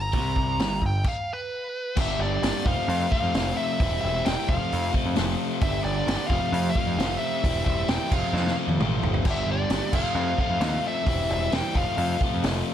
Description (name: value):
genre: classic rock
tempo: 132 BPM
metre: 4/4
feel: straight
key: unclear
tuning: A4 = 441 Hz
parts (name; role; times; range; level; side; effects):
- nasal lead guitar with a parked wah; melody; 0.0-12.2 s; B4 to Bb5; -29 LUFS; equal; overdrive, analog delay
- crunchy overdriven guitar; riff; 0.0-12.7 s; F2 to G4; -28 LUFS; left 1 dB; none
- growling picked electric bass; bass; 0.0-12.6 s; E1 to F2; -28 LUFS; equal; overdrive
- vintage drum kit; drums; 0.1-12.6 s; crash cymbal, hi-hat, kick drum, snare drum, toms; -27 LUFS; equal; none
room: light reverb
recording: none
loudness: -22 LUFS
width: side -10 dB against mid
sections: 0.0-2.0 A section; 2.0-12.7 B section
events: lead electric guitar solo 0.0-2.0; stop 1.1-2.0; drum fill 8.4-9.3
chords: 0.0 G; 2.7 F; 3.8 C/E; 4.5 F; 5.6 G; 6.3 F; 7.4 C/E; 8.1 F; 9.3 G; 9.9 F; 11.1 C/E; 11.8 F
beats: | 0.14 0.60 1.06 1.52 | 1.97 2.43 2.89 3.34 | 3.80 4.25 4.71 5.17 | 5.62 6.08 6.53 6.99 | 7.44 7.90 8.35 8.81 | 9.26 9.72 10.17 10.63 | 11.08 11.54 11.99 12.45